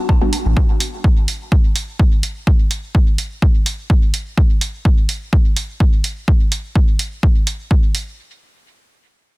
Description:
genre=dub techno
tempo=126 BPM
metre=4/4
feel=straight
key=E minor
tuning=A4 = 440 Hz
part: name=electronic kick drum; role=drums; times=0.1-7.8 s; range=none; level=-14 LUFS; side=equal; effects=none
part: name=electronic hi-hat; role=drums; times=0.3-8.0 s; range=none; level=-24 LUFS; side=right 3 dB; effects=none
part: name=warm sub bass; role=bass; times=0.5 s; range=A1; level=-15 LUFS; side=equal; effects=sidechain pumping
room=digital ambience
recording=dense, heavily limited modern master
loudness=-14 LUFS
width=side -22 dB against mid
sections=0.0-8.2 A section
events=none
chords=none

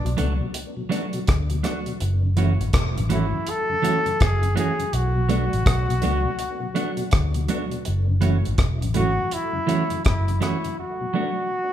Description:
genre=roots reggae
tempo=82 BPM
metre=4/4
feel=swing 61% on 16ths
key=F# minor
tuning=A4 = 440 Hz
part: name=clear trombone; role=melody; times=0.0-11.7 s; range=D4 to A4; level=-26 LUFS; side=left 1 dB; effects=none
part: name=mellow tonewheel organ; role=accompaniment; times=0.0-11.2 s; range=F#2 to E4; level=-31 LUFS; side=left 2 dB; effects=chorus vibrato, slow rotary speaker, tape echo
part: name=vintage muted fingered electric bass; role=bass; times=0.0-10.4 s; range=E1 to D2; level=-23 LUFS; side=equal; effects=none
part: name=deep reggae drum kit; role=drums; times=0.1-10.8 s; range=hi-hat, kick drum, rim click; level=-23 LUFS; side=equal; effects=none
part: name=clean electric guitar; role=accompaniment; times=0.2-11.3 s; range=E3 to F#4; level=-27 LUFS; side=right 4 dB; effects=spring reverb
room=wet large studio reverb, RT60 1.4 s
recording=band playing live in one room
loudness=-20 LUFS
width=side -10 dB against mid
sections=0.0-11.7 A section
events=break 10.8-11.7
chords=0.0 Bm7; 2.0 F#m7; 4.9 Bm7; 7.9 F#m7; 10.8 Bm7

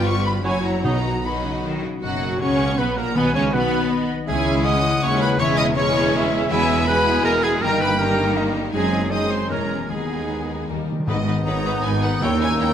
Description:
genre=classical, dramatic, fast romantic movement for symphony orchestra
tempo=160 BPM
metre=3/4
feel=rubato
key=B major, G# minor from 6.5 s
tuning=A4 = 440 Hz
part: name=warm symphonic violin section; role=melody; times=0.0-12.7 s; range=D#5 to D#6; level=-29 LUFS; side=left 2 dB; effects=none
part: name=silver concert flute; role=second line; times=0.0-12.7 s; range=B#4 to E6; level=-28 LUFS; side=left 1 dB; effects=none
part: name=warm symphonic violin section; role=second line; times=0.0-12.7 s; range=A#3 to D#5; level=-30 LUFS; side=left 3 dB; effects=none
part: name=warm symphonic viola section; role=accompaniment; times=0.0-12.7 s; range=D#3 to C#5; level=-27 LUFS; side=right 2 dB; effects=none
part: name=clear French horn section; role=sustained chords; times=0.0-12.7 s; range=F#3 to F#4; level=-29 LUFS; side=left 3 dB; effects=none
part: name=warm trombone section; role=sustained chords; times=0.0-12.7 s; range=F#2 to A#3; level=-30 LUFS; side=right 5 dB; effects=none
part: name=concert harp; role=arpeggios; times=0.0-12.7 s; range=F#2 to G#5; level=-28 LUFS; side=left 8 dB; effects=none
part: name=bright studio double bass section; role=bass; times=0.0-12.7 s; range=E1 to D#2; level=-28 LUFS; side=right 3 dB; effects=none
part: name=rich symphonic cello section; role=bass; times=0.0-12.7 s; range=C#2 to D#3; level=-27 LUFS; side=right 3 dB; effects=none
part: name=bright clarinet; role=second line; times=0.4-12.7 s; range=D#4 to D#5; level=-28 LUFS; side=left 1 dB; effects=none
part: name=warm cor anglais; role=second line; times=0.4-12.7 s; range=E4 to D#5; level=-28 LUFS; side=right 3 dB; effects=none
part: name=mellow bassoon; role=accompaniment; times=0.4-1.0, 11.1-12.7 s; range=F#3 to B3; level=-32 LUFS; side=right 3 dB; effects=none
part: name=timpani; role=percussion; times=0.8-3.7, 10.7-12.7 s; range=G#2 to D#3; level=-28 LUFS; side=equal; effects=none
room=moderate recital hall reverb, RT60 1.4 s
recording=none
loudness=-18 LUFS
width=side -9 dB against mid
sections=0.0-2.0 A section; 2.0-11.1 B section; 11.1-12.7 C section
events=timpani fill 10.7-11.1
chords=0.4 F#7; 0.8 B; 2.0 B/F#; 3.2 B; 4.3 C#m; 5.4 C#m/E; 6.5 E; 7.6 D#/G; 8.7 G#7/F#; 9.5 C#m/E; 9.9 G#m/D#; 10.7 D#; 11.1 G#m; 12.2 D#7b9

